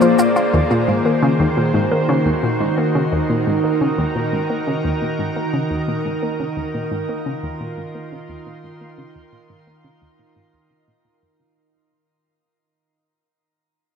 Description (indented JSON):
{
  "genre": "ambient, sequencer-driven space music",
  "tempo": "87 BPM",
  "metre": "4/4",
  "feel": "straight",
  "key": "Eb dorian",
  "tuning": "A4 = 440 Hz",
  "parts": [
    { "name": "evolving wavetable pad", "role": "sustained chords", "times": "0.0-11.6 s", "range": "Eb3 to C6", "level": "-19 LUFS", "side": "equal", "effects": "chorus, built-in reverb" },
    { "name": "analog pluck", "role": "riff", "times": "0.0-11.6 s", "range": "Eb2 to E#4", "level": "-21 LUFS", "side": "left 1 dB", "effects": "chorus, tape echo" },
    { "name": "shaker", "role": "percussion", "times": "0.0-0.5 s", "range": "none", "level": "-39 LUFS", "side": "left 1 dB", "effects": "tape echo" }
  ],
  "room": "wet shimmer reverb, RT60 8.1 s",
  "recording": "none",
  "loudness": "-17 LUFS",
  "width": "side -6 dB against mid",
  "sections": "0.5-11.6 A section",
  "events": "fade-out 0.5-11.6; filter sweep on synth arpeggio sound 0.5-11.6",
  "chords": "0.0 A#7; 0.5 Ebm"
}